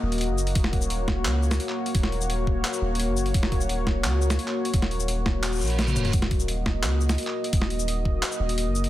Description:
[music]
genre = half-time drum and bass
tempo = 172 BPM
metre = 4/4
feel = half-time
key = Eb minor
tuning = A4 = 440 Hz
[part]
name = dark analog pad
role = sustained chords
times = 0.0-8.9 s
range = Bb3 to Eb5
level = -29 LUFS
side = left 2 dB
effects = chorus, sidechain pumping
[part]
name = long sustained 808-style bass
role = bass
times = 0.0-8.9 s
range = Eb1 to Db2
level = -26 LUFS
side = equal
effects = none
[part]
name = boom bap sampler-style drum kit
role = drums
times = 0.1-8.9 s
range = handclaps, hi-hat, shaker, snare drum, toms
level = -29 LUFS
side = equal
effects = overdrive, studio reverb
[part]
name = electronic kick drum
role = drums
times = 0.6-8.1 s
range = none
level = -25 LUFS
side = equal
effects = studio reverb
[part]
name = reverse cymbal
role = sound effects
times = 5.6-6.1 s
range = none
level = -35 LUFS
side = right 4 dB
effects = none
[sound]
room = little or no reverb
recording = dense, heavily limited modern master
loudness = -22 LUFS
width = side -14 dB against mid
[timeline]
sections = 0.0-8.9 A section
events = reverse cymbal 5.6-6.1; drum fill 5.8-6.1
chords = 0.0 Ebm

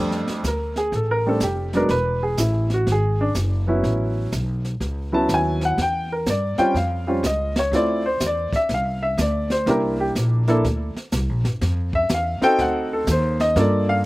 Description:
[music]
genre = jazz piano trio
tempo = 123 BPM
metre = 4/4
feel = swing 66% on 8ths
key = unclear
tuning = A4 = 440 Hz
[part]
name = warm upright piano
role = melody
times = 0.0-14.1 s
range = F2 to A5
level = -20 LUFS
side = equal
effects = slapback echo
[part]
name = upright bass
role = bass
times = 0.0-14.0 s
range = E1 to G2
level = -23 LUFS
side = equal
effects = none
[part]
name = jazz brush drum kit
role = drums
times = 0.1-14.1 s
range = brushed snare drum, hi-hat, kick drum, snare drum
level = -28 LUFS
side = equal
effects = none
[sound]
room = little or no reverb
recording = recorded outdoors, with no room sound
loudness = -19 LUFS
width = side -19 dB against mid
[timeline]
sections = 0.0-14.1 A section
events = upright piano solo 0.0-14.1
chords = 0.0 F69; 1.9 Eadd9; 3.8 A69; 5.8 Em7; 6.8 Dbadd9; 7.7 Dm9; 9.7 C7; 11.6 N.C.; 12.6 D7b9

